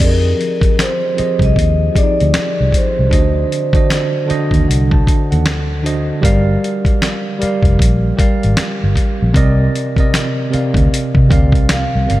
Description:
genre	R&B, neo-soul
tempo	77 BPM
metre	4/4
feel	swing 62% on 16ths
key	F dorian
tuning	A4 = 440 Hz
part	vibraphone with soft mallets	melody	0.0-4.3, 11.7-12.2 s	Bb4 to F5	-20 LUFS	right 1 dB	none
part	tine electric piano	accompaniment	0.0-12.2 s	C3 to A5	-18 LUFS	right 1 dB	medium stereo tremolo
part	vintage muted fingered electric bass	bass	0.0-12.2 s	F1 to C3	-14 LUFS	equal	none
part	dusty soul sampler-style drum kit	drums	0.0-12.2 s	crash cymbal, finger snaps, hi-hat, kick drum, snare drum	-16 LUFS	equal	none
room	light reverb, digital ambience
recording	none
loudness	-12 LUFS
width	side -16 dB against mid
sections	0.0-12.2 A section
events	none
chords	0.0 Fm7; 3.1 D7b9; 6.2 Gm7; 9.3 Cm9

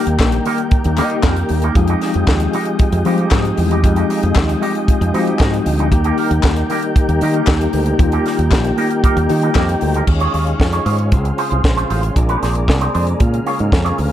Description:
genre	disco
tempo	115 BPM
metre	4/4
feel	straight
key	unclear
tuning	A4 = 439 Hz
part	electric guitar with an envelope filter	accompaniment	0.0-14.0 s	Ab3 to Db5	-23 LUFS	right 3 dB	wide subtle chorus
part	mellow tine electric piano	accompaniment	0.0-10.1 s	F3 to G5	-20 LUFS	left 4 dB	medium stereo tremolo
part	tonewheel organ	sustained chords	0.0-14.1 s	C3 to G4	-21 LUFS	left 1 dB	chorus vibrato, lush chorus
part	modern bright fingered electric bass	bass	0.1-14.1 s	A1 to F3	-17 LUFS	equal	none
part	tight funk drum kit	drums	0.1-14.1 s	crash cymbal, hi-hat, kick drum, snare drum	-17 LUFS	equal	none
part	group handclap	percussion	0.2-9.7 s	none	-27 LUFS	left 8 dB	none
room	small room ambience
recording	dark, warm production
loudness	-13 LUFS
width	side -11 dB against mid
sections	0.0-10.1 A section; 10.1-14.1 B section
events	tine electric piano fill 9.0-10.1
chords	0.0 Eb; 1.8 Fm9; 5.9 Eb; 10.1 Eb9sus4; 11.1 Dbmaj7; 12.2 Bb9; 13.2 Bbm7

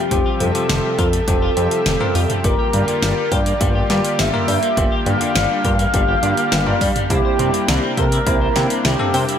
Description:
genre	synthwave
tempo	103 BPM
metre	4/4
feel	straight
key	G dorian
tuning	A4 = 442 Hz
part	expressive synth lead	melody	0.0-9.4 s	G4 to F5	-21 LUFS	equal	wide subtle chorus, tape echo
part	lush unison pad	sustained chords	0.0-9.4 s	C3 to E5	-24 LUFS	equal	chorus, sidechain pumping
part	clean electric guitar	riff	0.1-9.3 s	F3 to C5	-28 LUFS	left 2 dB	lush chorus, ping-pong delay
part	bell-like tine electric piano	stabs	0.1-9.1 s	Bb3 to Bb4	-25 LUFS	left 3 dB	tape echo
part	fat analog bass	bass	0.1-9.2 s	F1 to C3	-20 LUFS	equal	tube saturation
part	electronic kick drum	drums	0.1-8.4 s	none	-21 LUFS	equal	none
part	pop drum kit	drums	0.1-9.4 s	hi-hat, snare drum, toms	-23 LUFS	equal	none
room	light reverb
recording	none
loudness	-15 LUFS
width	side -8 dB against mid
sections	0.0-9.4 A section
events	none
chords	0.0 Fsus2; 2.4 Gm7; 7.1 C7

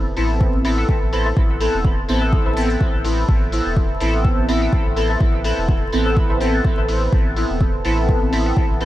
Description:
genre	dub techno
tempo	125 BPM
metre	4/4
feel	swing 55% on 16ths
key	A minor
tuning	A4 = 440 Hz
part	dark analog pad	sustained chords	0.1-8.8 s	A4 to A5	-30 LUFS	right 2 dB	chorus, phaser, sidechain pumping
part	soft dub sub bass	bass	0.0-8.8 s	E1 to A1	-22 LUFS	equal	tube saturation, sidechain pumping
part	resonant sweep polysynth	stabs	0.2-8.8 s	B3 to A4	-20 LUFS	equal	chorus, phaser, sidechain pumping, dub echo
part	electronic hi-hat	drums	0.2-8.8 s	none	-36 LUFS	left 3 dB	none
part	electronic kick drum	drums	0.4-8.7 s	none	-18 LUFS	equal	overdrive
part	filtered dub chord stab	riff	1.3-6.9 s	A4 to E5	-33 LUFS	left 2 dB	none
room	digital ambience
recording	dark, warm production, vinyl crackle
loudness	-16 LUFS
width	side -14 dB against mid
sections	0.0-8.8 A section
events	none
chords	0.0 Amadd9

